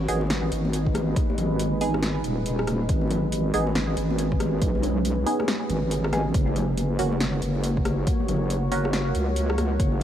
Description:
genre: deep dubstep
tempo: 139 BPM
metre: 4/4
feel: swing 62% on 16ths, half-time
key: G# minor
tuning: A4 = 440 Hz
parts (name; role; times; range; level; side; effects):
- deep dark ambient pad; sustained chords; 0.0-10.0 s; G#3 to C#5; -30 LUFS; equal; chorus, built-in reverb
- wobble bass; bass; 0.0-10.0 s; D#1 to C#2; -25 LUFS; equal; chorus
- filtered dub chord stab; stabs; 0.1-8.9 s; A#3 to G#4; -31 LUFS; right 2 dB; phaser, dub echo
- deep house drum kit; drums; 0.1-9.9 s; hi-hat, rim click, snare drum; -31 LUFS; equal; overdrive
- congas; percussion; 0.2-10.0 s; none; -32 LUFS; left 2 dB; dub echo
- electronic kick drum; drums; 0.9-9.9 s; none; -25 LUFS; equal; overdrive
room: light reverb, digital ambience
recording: vinyl crackle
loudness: -22 LUFS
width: side -10 dB against mid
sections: 0.0-10.0 A section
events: none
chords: 0.0 G#m; 6.3 F#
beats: 0.30 0.73 | 1.16 1.59 2.03 2.46 | 2.89 3.32 3.75 4.18 | 4.62 5.05 5.48 5.91 | 6.34 6.77 7.21 7.64 | 8.07 8.50 8.93 9.36 | 9.80

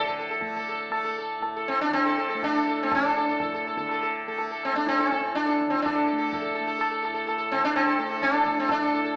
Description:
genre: indian classical, Hindustani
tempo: 124 BPM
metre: 3/4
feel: uneven beats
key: unclear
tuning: A4 = 441 Hz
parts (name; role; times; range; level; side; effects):
- sitar; melody; 0.0-9.2 s; C4 to A4; -27 LUFS; equal; none
- tanpura; drone; 0.0-9.2 s; A2 to A3; -38 LUFS; equal; none
- tabla; percussion; 0.4-8.9 s; none; -35 LUFS; equal; none
room: wet recital hall reverb, RT60 1.5 s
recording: AM radio sound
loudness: -26 LUFS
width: mono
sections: 0.0-9.2 A section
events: speeding up 0.0-9.2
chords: none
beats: 0.42 0.92 | 1.43 1.93 2.42 | 2.92 3.41 3.90 | 4.39 4.88 5.36 | 5.84 6.33 6.80 | 7.28 7.75 8.23 | 8.70

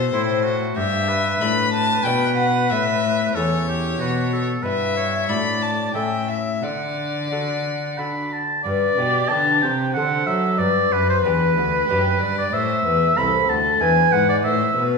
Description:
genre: classical, baroque-style sonata movement with continuo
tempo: 93 BPM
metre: 3/4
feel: straight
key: D major, G major from 8.7 s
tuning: A4 = 440 Hz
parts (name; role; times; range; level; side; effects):
- warm violin; melody; 0.0-15.0 s; G4 to B5; -23 LUFS; left 6 dB; none
- lute; accompaniment; 0.0-15.0 s; D2 to C5; -29 LUFS; left 2 dB; none
- rich cello; bass; 0.0-15.0 s; C2 to F#3; -24 LUFS; left 1 dB; none
- bright oboe; second line; 0.1-14.9 s; E4 to B5; -22 LUFS; right 3 dB; none
room: wet recital hall reverb, RT60 1.3 s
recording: recorded in a church or concert hall, studio ambience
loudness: -18 LUFS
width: side -4 dB against mid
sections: 0.0-8.7 A section; 8.7-15.0 A section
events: none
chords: 0.0 Am; 0.8 Em7/G; 2.7 A; 4.0 Bm; 4.6 Em/G; 5.3 D/A; 6.0 A7; 6.6 D; 8.7 G; 10.0 D7; 10.6 G; 12.5 Am; 13.8 E7; 14.4 Am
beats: 0.13 | 0.78 1.42 2.06 | 2.71 3.35 4.00 | 4.65 5.29 5.95 | 6.63 7.31 7.99 | 8.66 9.31 9.95 | 10.60 11.24 11.89 | 12.53 13.18 13.81 | 14.45

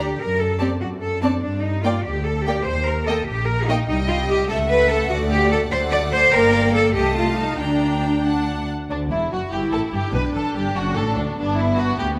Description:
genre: quick classical-period movement for string orchestra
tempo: 97 BPM (dotted quarters)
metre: 6/8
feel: rubato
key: G minor, G major from 8.9 s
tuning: A4 = 440 Hz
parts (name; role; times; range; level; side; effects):
- clear studio violin section; melody; 0.0-11.9 s; D4 to Bb5; -34 LUFS; equal; none
- rich studio violin section; second line; 0.0-12.1 s; D4 to G5; -30 LUFS; equal; none
- rich studio viola section; accompaniment; 0.0-12.2 s; G3 to E4; -28 LUFS; equal; none
- rich studio cello section; bass; 0.0-12.2 s; D2 to D5; -24 LUFS; equal; none
- rich studio double bass section; bass; 0.0-12.2 s; E1 to G2; -27 LUFS; equal; none
room: moderate scoring stage reverb, RT60 1.8 s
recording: none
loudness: -20 LUFS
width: mono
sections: 0.0-8.9 A section; 8.9-12.2 A section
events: none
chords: 0.2 D7/F# (rootless); 1.4 Gm; 2.7 Eb; 3.9 Cmadd11; 4.5 A/C#; 5.1 D; 5.7 D7; 6.3 Gm; 6.9 Adim/C; 7.6 Gm/D; 8.9 G5; 10.1 D; 11.4 G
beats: | 0.18 0.80 | 1.42 2.04 | 2.66 3.27 | 3.88 4.49 | 5.09 5.70 | 6.32 6.94 | 7.58 8.24 | 8.89 9.51 | 10.14 10.76 | 11.37 11.99

